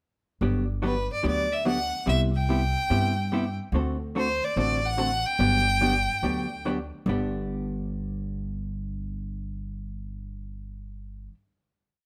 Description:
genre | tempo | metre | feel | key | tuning
country, western swing | 144 BPM | 4/4 | swing 65% on 8ths | G major | A4 = 440 Hz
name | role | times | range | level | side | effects
vintage hollow-body jazz guitar | accompaniment | 0.4-11.3 s | G2 to A4 | -32 LUFS | equal | none
upright bass | bass | 0.4-11.3 s | G1 to G2 | -32 LUFS | equal | none
clear fiddle | melody | 0.9-6.7 s | B4 to G5 | -29 LUFS | equal | none
room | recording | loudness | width
light reverb | none | -27 LUFS | mono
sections
0.4-7.1 A section; 7.1-10.4 final chord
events
none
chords
0.4 Gmaj7; 2.1 Cmaj7; 3.7 D7; 5.4 Gmaj7; 7.1 G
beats
| 0.41 0.82 1.24 1.65 | 2.07 2.48 2.90 3.31 | 3.73 4.14 4.56 4.98 | 5.39 5.81 6.23 6.65 | 7.07 7.49 7.90 8.32 | 8.74 9.16 9.58 10.00

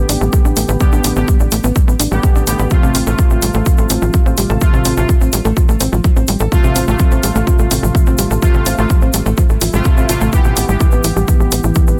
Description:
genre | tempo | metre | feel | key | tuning
melodic techno | 126 BPM | 4/4 | straight | unclear | A4 = 442 Hz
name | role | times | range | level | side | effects
soft round pluck | arpeggios | 0.0-12.0 s | B2 to B5 | -22 LUFS | equal | chorus, sidechain pumping, tape echo
analog synth brass | stabs | 0.0-12.0 s | C3 to G4 | -22 LUFS | equal | chorus, sidechain pumping, tape echo
tight sequencer bass | bass | 0.0-12.0 s | A1 | -19 LUFS | equal | sidechain pumping
electronic hi-hat | drums | 0.1-11.6 s | none | -22 LUFS | equal | overdrive
egg shaker | percussion | 0.1-12.0 s | none | -28 LUFS | equal | none
electronic kick drum | drums | 0.3-11.9 s | none | -14 LUFS | equal | none
swell | sound effects | 9.6-10.3 s | none | -33 LUFS | equal | none
room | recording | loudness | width
digital ambience | dense, heavily limited modern master | -13 LUFS | mono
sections
0.0-12.0 A section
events
none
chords
0.0 G/A; 2.7 F/A; 10.3 Em/A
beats
0.33 | 0.81 1.28 1.76 2.23 | 2.71 3.19 3.66 4.14 | 4.61 5.09 5.57 6.04 | 6.52 7.00 7.47 7.95 | 8.42 8.90 9.38 9.85 | 10.33 10.80 11.28 11.76

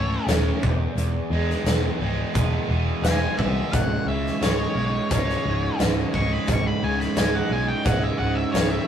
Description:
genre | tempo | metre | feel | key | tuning
classic rock | 87 BPM | 4/4 | straight | C# minor | A4 = 440 Hz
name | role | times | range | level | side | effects
octave-fuzz lead guitar | melody | 0.0-8.9 s | C#5 to C#6 | -29 LUFS | left 1 dB | distortion
crunchy overdriven guitar | riff | 0.0-8.9 s | C#2 to E4 | -28 LUFS | right 5 dB | none
raw garage guitar | riff | 0.0-8.9 s | C#2 to E4 | -30 LUFS | left 2 dB | overdrive
picked electric bass | bass | 0.0-8.8 s | C#1 to E2 | -26 LUFS | equal | none
huge arena drum kit | drums | 0.3-8.7 s | hi-hat, kick drum, snare drum | -25 LUFS | equal | none
bright tonewheel organ | sustained chords | 3.7-8.9 s | G#3 to C#5 | -39 LUFS | equal | none
cowbell | percussion | 3.7-8.7 s | none | -38 LUFS | left 2 dB | none
room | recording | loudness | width
moderate studio reverb, RT60 0.6 s | rough rehearsal-room recording, tube saturation, lossy compression artefacts | -20 LUFS | side -9 dB against mid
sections
0.0-8.9 A section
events
lead electric guitar solo 0.0-8.9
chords
0.0 A/C#; 0.6 E; 3.7 C#m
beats
0.28 | 0.97 1.66 2.35 3.03 | 3.72 4.41 5.10 5.79 | 6.48 7.17 7.86 8.54

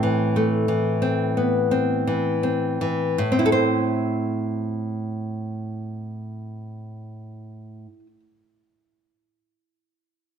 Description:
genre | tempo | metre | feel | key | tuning
romantic piece for solo classical guitar | 40-47 BPM | 3/4 | rubato | A minor | A4 = 440 Hz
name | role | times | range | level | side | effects
nylon-string guitar | solo | 0.0-8.2 s | A2 to C5 | -22 LUFS | equal | none
room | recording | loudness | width
light reverb | close, detailed microphones | -21 LUFS | side -7 dB against mid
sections
0.0-3.2 A section; 3.2-7.5 B section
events
slowing down 0.0-3.2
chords
0.0 Am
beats
0.36 1.72 | 3.18 4.61 6.04

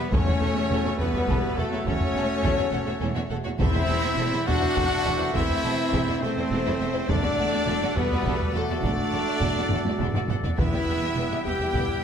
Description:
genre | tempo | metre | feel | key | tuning
cinematic, epic orchestral film score | 69 BPM (dotted quarters) | 12/8 | straight | unclear | A4 = 439 Hz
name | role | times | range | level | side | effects
rich symphonic violin section | melody | 0.0-12.0 s | A4 to G5 | -32 LUFS | left 4 dB | none
rich symphonic violin section | second line | 0.0-11.8 s | C4 to G5 | -36 LUFS | left 1 dB | none
rich symphonic viola section | accompaniment | 0.0-12.0 s | F#3 to E4 | -32 LUFS | equal | none
mellow French horn section | sustained chords | 0.0-12.0 s | A3 to G4 | -30 LUFS | left 3 dB | none
warm trombone section | sustained chords | 0.0-12.0 s | E3 to F#4 | -36 LUFS | right 4 dB | none
warm woodwind section | sustained chords | 0.0-12.0 s | A3 to G5 | -36 LUFS | left 2 dB | none
bright trumpet | stabs | 0.0-12.0 s | A3 to G4 | -32 LUFS | right 2 dB | none
rich symphonic cello section | bass | 0.0-11.8 s | E2 | -33 LUFS | right 2 dB | none
clear symphonic double bass section | bass | 0.1-11.8 s | E1 | -32 LUFS | right 3 dB | none
taiko ensemble | drums | 0.1-12.0 s | none | -28 LUFS | equal | none
timpani | percussion | 0.1-11.4 s | E2 | -32 LUFS | left 2 dB | none
room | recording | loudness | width
moderate scoring stage reverb, RT60 1.5 s | none | -22 LUFS | side -8 dB against mid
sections
0.0-12.0 A section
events
drum fill 9.7-10.6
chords
0.1 F#m/E; 3.6 Am/E; 7.1 D/E; 10.6 Em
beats
| 0.11 0.99 1.86 2.73 | 3.60 4.47 5.34 6.22 | 7.09 7.96 8.83 9.70 | 10.57 11.45

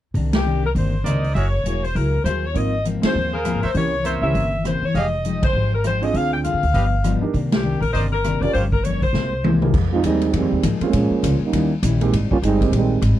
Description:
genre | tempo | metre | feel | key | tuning
jazz, big band swing | 200 BPM | 4/4 | swing 60% on 8ths | C minor, F minor from 9.7 s | A4 = 441 Hz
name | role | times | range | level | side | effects
picked steel-string acoustic guitar | accompaniment | 0.1-13.2 s | G2 to G#4 | -25 LUFS | left 4 dB | none
upright bass | bass | 0.1-13.2 s | E1 to Bb2 | -22 LUFS | equal | none
swinging big-band drum kit | drums | 0.1-13.1 s | crash cymbal, hi-hat, kick drum, ride cymbal, rim click, snare drum, toms | -24 LUFS | equal | none
clear saxophone section | melody | 0.3-9.6 s | G4 to G5 | -24 LUFS | left 3 dB | none
clear trumpet section | stabs | 1.0-8.7 s | Eb4 to F5 | -27 LUFS | right 3 dB | none
clear baby grand piano | accompaniment | 2.5-12.7 s | F3 to Bb4 | -25 LUFS | right 7 dB | none
warm trombone section | second line | 9.9-13.0 s | Eb3 to F4 | -19 LUFS | right 4 dB | none
room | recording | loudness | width
little or no reverb | none | -17 LUFS | side -13 dB against mid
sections
0.1-9.7 A section; 9.7-13.2 B section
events
band accent 0.3, 3.0, 5.4, 7.5; drum fill 9.1-9.7; trombone section solo 9.7-13.2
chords
0.1 Cm9; 1.3 F#9; 2.5 Ab69; 3.7 C7b9; 4.9 Fm9; 6.1 Dm7b5; 6.7 G7alt; 7.3 Cm9; 8.5 Gm7b5; 9.1 C7alt; 9.7 Fm11; 10.9 Bbm7; 11.5 Eb7b9; 12.1 Abmaj7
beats
| 0.15 0.45 0.75 1.05 | 1.35 1.65 1.95 2.25 | 2.55 2.85 3.15 3.45 | 3.75 4.05 4.35 4.64 | 4.95 5.24 5.54 5.84 | 6.14 6.44 6.74 7.04 | 7.34 7.64 7.94 8.24 | 8.54 8.84 9.14 9.44 | 9.74 10.04 10.33 10.63 | 10.93 11.23 11.53 11.82 | 12.12 12.42 12.72 13.02

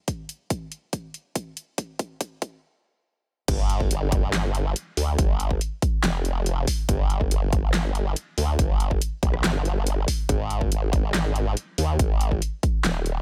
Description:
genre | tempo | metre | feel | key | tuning
heavy wobble dubstep | 141 BPM | 4/4 | half-time | unclear | A4 = 441 Hz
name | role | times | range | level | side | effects
big-room dance drum kit | drums | 0.1-13.1 s | crash cymbal, handclaps, hi-hat, rim click, snare drum | -31 LUFS | equal | overdrive
electronic kick drum | drums | 0.1-12.7 s | none | -27 LUFS | equal | overdrive
formant-sweep wobble bass | bass | 3.5-13.2 s | Eb1 to Eb2 | -26 LUFS | equal | chorus, overdrive
room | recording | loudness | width
little or no reverb | high-pass filter | -25 LUFS | mono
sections
0.0-3.5 A section; 3.5-13.2 B section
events
build-up 0.0-3.5; drum fill 0.1-2.6; stop 2.6-3.5; drop 3.5-13.2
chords
none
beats
| 0.08 0.50 0.93 1.35 | 1.78 2.21 2.63 3.06 | 3.48 3.91 4.33 4.76 | 5.18 5.61 6.04 6.46 | 6.89 7.31 7.74 8.16 | 8.59 9.02 9.44 9.87 | 10.29 10.72 11.14 11.57 | 11.99 12.42 12.85

